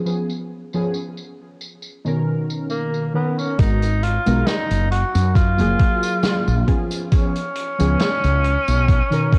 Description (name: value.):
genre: vaporwave.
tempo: 68 BPM.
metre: 4/4.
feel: swing 54% on 16ths.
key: unclear.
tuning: A4 = 440 Hz.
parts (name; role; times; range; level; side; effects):
warbly lo-fi synth keys; accompaniment; 0.1-9.4 s; B2 to A#4; -25 LUFS; equal; analog chorus, tape echo.
vintage drum kit; drums; 0.1-9.4 s; hi-hat, snare drum, tambourine; -30 LUFS; equal; low-pass filter on hats, low-pass filter on snare, low-pass filter on perc, low-pass filter on room.
breathy tenor saxophone; melody; 2.7-9.4 s; A#3 to F#4; -25 LUFS; equal; vintage 12-bit sampler grit, tape echo.
woody fretless electric bass; bass; 3.6-9.0 s; F#1 to F#2; -21 LUFS; equal; analog chorus.
electronic kick drum; drums; 3.6-9.4 s; none; -19 LUFS; equal; overdrive.
room: light reverb, small room ambience.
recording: cassette tape.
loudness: -20 LUFS.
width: mono.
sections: 0.0-3.6 A section; 3.6-9.4 B section.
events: none.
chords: 0.0 C#7; 1.8 Bmaj9; 3.6 G#m9; 4.9 F#maj9; 6.7 C#7; 8.9 Bmaj9.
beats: | 0.06 0.94 1.83 2.71 | 3.59 4.47 5.36 6.24 | 7.12 8.00 8.88.